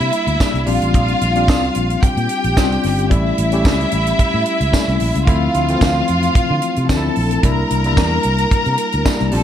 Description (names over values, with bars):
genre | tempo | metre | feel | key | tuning
disco | 111 BPM | 4/4 | straight | unclear | A4 = 440 Hz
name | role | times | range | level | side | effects
clear studio string section | second line | 0.0-9.4 s | E4 to Bb5 | -19 LUFS | right 1 dB | none
barky tine electric piano | accompaniment | 0.0-9.4 s | E3 to G4 | -21 LUFS | left 5 dB | medium stereo tremolo
fingered electric bass | bass | 0.0-9.4 s | G1 to D3 | -19 LUFS | equal | none
tight funk drum kit | drums | 0.0-9.4 s | hi-hat, kick drum, snare drum | -18 LUFS | right 1 dB | gated reverb
tambourine | percussion | 0.4-9.2 s | none | -30 LUFS | right 4 dB | none
room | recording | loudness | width
light reverb, studio reverb | none | -14 LUFS | side -10 dB against mid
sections
0.0-9.4 A section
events
none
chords
0.0 C9; 0.7 Bb69; 3.1 A7; 5.3 Dm7; 7.4 C9